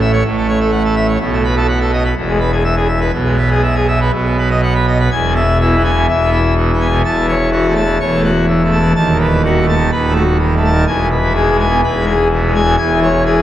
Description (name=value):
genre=classical, organ toccata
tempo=125 BPM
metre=4/4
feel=straight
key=E major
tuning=A4 = 440 Hz
part: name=pipe organ, full organ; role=solo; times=0.0-13.4 s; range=D#1 to A5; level=-12 LUFS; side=equal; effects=none
room=wet cathedral reverb, RT60 6.0 s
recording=worn, warbling old tape, cassette tape, warbly pitch drift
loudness=-12 LUFS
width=side -12 dB against mid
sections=0.0-5.1 A section; 5.1-13.4 B section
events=none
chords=0.0 F#m7/A; 1.2 B7; 2.2 E; 3.1 E/B; 4.1 B; 5.1 E; 7.0 F#m7/E; 9.0 B7/D#; 10.9 E; 12.8 C#m/E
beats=0.24 0.72 | 1.20 1.67 2.16 2.64 | 3.13 3.63 4.13 4.62 | 5.12 5.60 6.09 6.57 | 7.05 7.53 8.00 8.48 | 8.96 9.44 9.92 10.40 | 10.88 11.36 11.83 12.31 | 12.78 13.26